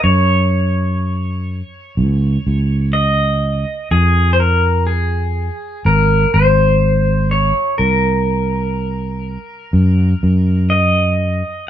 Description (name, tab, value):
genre	folk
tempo	62 BPM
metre	4/4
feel	straight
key	unclear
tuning	A4 = 440 Hz
part	pedal steel guitar	melody	0.0-11.6 s	Ab4 to Eb5	-18 LUFS	equal	none
part	sustaining fretless electric bass	bass	0.0-11.4 s	Ab1 to Gb2	-14 LUFS	equal	none
room	light reverb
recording	minimal, uncompressed stereo recording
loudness	-13 LUFS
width	side -10 dB against mid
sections	0.0-11.7 A section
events	none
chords	0.0 Gb5; 3.9 Ab69; 7.8 Cm7b5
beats	| 0.04 1.01 1.98 2.95 | 3.92 4.88 5.85 6.82 | 7.79 8.76 9.74 10.72